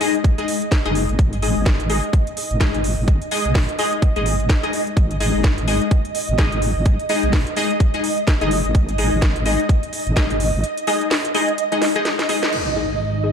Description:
bass house; 127 BPM; 4/4; swing 59% on 16ths; A4 = 440 Hz
orchestra-hit-like synth stab; stabs; 0.0-13.3 s; G#3 to D#5; -22 LUFS; left 4 dB; built-in reverb, phaser, sidechain pumping, tape echo
garage drum kit; drums; 0.0-12.6 s; crash cymbal, hi-hat, snare drum; -25 LUFS; equal
ethereal airy pad; texture; 0.0-13.3 s; D#4 to D#5; -26 LUFS; right 4 dB; ensemble chorus, built-in reverb, tremolo, sidechain pumping
electronic kick drum; drums; 0.2-10.3 s; -18 LUFS; equal
wobble bass; bass; 0.9-10.6 s; F#1 to B1; -21 LUFS; equal; chorus, overdrive, sidechain pumping
sweeping resonant pad; sustained chords; 12.5-13.3 s; G#2 to D#4; -24 LUFS; right 2 dB; chorus, sidechain pumping
impact; sound effects; 12.5-13.3 s; -28 LUFS; equal
light reverb, digital ambience; dark, warm production; -16 LUFS; side -7 dB against mid
0.0-12.5 A section
kick drops out 10.6-12.5; drum fill 11.8-12.5; band accent 12.4; impact 12.5-13.3
0.0 G#5

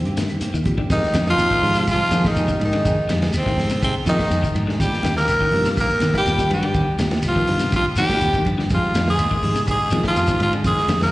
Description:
afrobeat; 123 BPM; 4/4; straight; F dorian; A4 = 440 Hz
raspy tenor saxophone; melody; 0.0-11.1 s; C4 to Bb4; -21 LUFS; equal; slapback echo
trombone with metal mute; second line; 0.0-11.1 s; C3 to Bb3; -29 LUFS; right 2 dB; slapback echo
fingered electric bass; bass; 0.0-11.1 s; Bb1 to F3; -22 LUFS; equal
clean electric guitar; stabs; 0.1-11.1 s; Eb3 to Ab4; -32 LUFS; right 4 dB; slapback echo
vintage drum kit; drums; 0.1-11.1 s; hi-hat, kick drum, ride cymbal, snare drum; -25 LUFS; equal
clean electric guitar; arpeggios; 0.2-11.1 s; C3 to Eb3; -29 LUFS; left 4 dB; analog chorus, slapback echo
congas; percussion; 0.2-11.0 s; -31 LUFS; equal
shekere; percussion; 0.2-11.1 s; -31 LUFS; equal; slapback echo
claves; percussion; 0.3-11.0 s; -43 LUFS; left 1 dB
bell-like tine electric piano; accompaniment; 0.7-11.1 s; Ab3 to Bb4; -31 LUFS; left 1 dB
light reverb, studio ambience; live gig heard through the venue's PA, recital hall reverb, nothing above 10.3 kHz; -17 LUFS; side -18 dB against mid
0.9-11.1 A section
0.0 Eb6; 0.9 Fm7; 4.8 Eb6; 8.7 Fm7

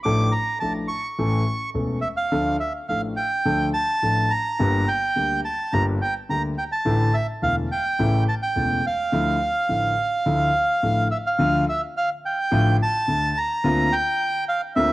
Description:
tango; 106 BPM; 4/4; rubato; D harmonic minor; A4 = 440 Hz
bandoneon; melody; 0.0-14.9 s; E5 to D6; -22 LUFS; right 2 dB; tape echo
warm concert grand piano; accompaniment; 0.0-14.9 s; E1 to A4; -23 LUFS; left 1 dB; cassette tape
wet small room reverb, RT60 0.5 s; home recording on cassette; -20 LUFS; side -18 dB against mid
0.0-11.4 A section; 11.4-14.9 B section
0.0 Dm/A; 1.2 A; 2.3 Dm; 4.6 Gm; 6.9 Asus4; 8.0 A; 9.1 Dmadd9; 11.4 Dm; 13.6 Bbadd9/D

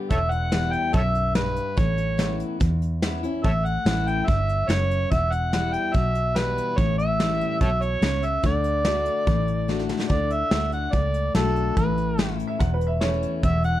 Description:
honky-tonk and classic country; 144 BPM; 4/4; straight; A4 = 438 Hz
picked steel-string acoustic guitar; accompaniment; 0.0-13.8 s; E2 to F#4; -29 LUFS; left 4 dB
overdriven harmonica; melody; 0.1-13.8 s; A4 to G5; -25 LUFS; right 1 dB
vintage muted fingered electric bass; bass; 0.1-13.8 s; E1 to E2; -25 LUFS; equal
soft brush drum kit; drums; 0.1-13.7 s; hi-hat, kick drum, snare drum; -25 LUFS; equal
bright upright piano; second line; 12.5-13.3 s; B4 to F#5; -28 LUFS; right 2 dB; slapback echo
little or no reverb; dark, warm production; -21 LUFS; side -14 dB against mid
0.0-13.8 A section
drum fill 9.7-10.1
0.1 Em; 1.8 Aadd9; 3.4 A; 5.1 Em; 6.8 A7; 8.4 D; 11.8 A

